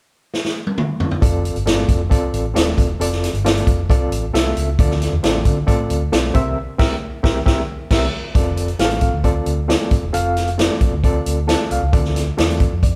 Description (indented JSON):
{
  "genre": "uptempo 1960s-style soul",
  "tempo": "134 BPM",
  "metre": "4/4",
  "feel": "straight",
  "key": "F major",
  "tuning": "A4 = 440 Hz",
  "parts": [
    { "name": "swinging big-band drum kit", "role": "drums", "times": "0.3-12.9 s", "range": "crash cymbal, hi-hat, kick drum, snare drum, toms", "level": "-20 LUFS", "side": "equal", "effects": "none" },
    { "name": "overdriven reed electric piano", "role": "accompaniment", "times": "1.2-13.0 s", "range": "C3 to A5", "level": "-24 LUFS", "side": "equal", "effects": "medium tremolo" },
    { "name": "vintage muted fingered electric bass", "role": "bass", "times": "1.2-13.0 s", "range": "Eb1 to D3", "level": "-24 LUFS", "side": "equal", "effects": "none" }
  ],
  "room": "moderate large studio reverb, RT60 1.2 s",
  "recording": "band playing live in one room",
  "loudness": "-18 LUFS",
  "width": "mono",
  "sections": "0.0-1.2 A section; 1.2-8.4 B section; 8.4-13.0 C section",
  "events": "drum fill 0.3-1.2; band accent 6.6-8.4; reed electric piano fill 11.3-11.9",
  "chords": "0.0 N.C.; 1.2 F6; 4.8 Dm7; 6.3 C7; 8.4 F6; 11.9 Dm7",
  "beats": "0.33 0.77 | 1.22 1.66 2.11 2.56 | 3.00 3.45 3.89 4.34 | 4.79 5.23 5.68 6.12 | 6.57 7.02 7.46 7.91 | 8.36 8.80 9.25 9.70 | 10.14 10.59 11.04 11.49 | 11.93 12.38 12.83"
}